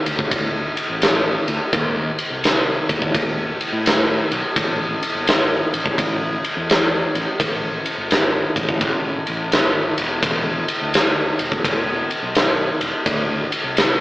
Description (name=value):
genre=blues rock power trio and southern rock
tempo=85 BPM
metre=4/4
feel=swing 64% on 8ths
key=A minor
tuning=A4 = 442 Hz
part: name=fuzz fingered electric bass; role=bass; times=0.1-14.0 s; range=E1 to A2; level=-26 LUFS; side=equal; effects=overdrive
part: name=big rock drum kit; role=drums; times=0.1-14.0 s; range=kick drum, ride cymbal, snare drum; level=-18 LUFS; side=equal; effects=none
room=little or no reverb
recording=band playing live in one room, AM radio sound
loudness=-17 LUFS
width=side -18 dB against mid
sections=0.0-14.0 A section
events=none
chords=none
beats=0.32 1.02 | 1.73 2.44 3.15 3.85 | 4.56 5.27 5.98 6.69 | 7.39 8.10 8.81 9.52 | 10.23 10.94 11.64 12.35 | 13.06 13.77